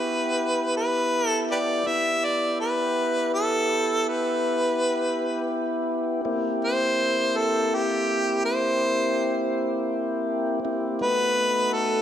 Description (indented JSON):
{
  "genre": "blues",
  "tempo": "55 BPM (dotted quarters)",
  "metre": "12/8",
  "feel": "straight",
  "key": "E harmonic minor",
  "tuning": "A4 = 440 Hz",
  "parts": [
    { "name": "warm harmonica", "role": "melody", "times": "0.0-12.0 s", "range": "G4 to E5", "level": "-24 LUFS", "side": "equal", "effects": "none" },
    { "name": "tonewheel organ", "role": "sustained chords", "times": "0.0-12.0 s", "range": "A3 to G4", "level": "-26 LUFS", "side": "equal", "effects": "slow rotary speaker, overdrive" }
  ],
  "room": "wet church reverb, RT60 3.2 s",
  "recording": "dreamy mix soaked in reverb",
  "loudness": "-22 LUFS",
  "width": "side -10 dB against mid",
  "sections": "0.0-12.0 A section",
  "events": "none",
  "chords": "0.0 Em; 6.3 C7; 10.6 B7"
}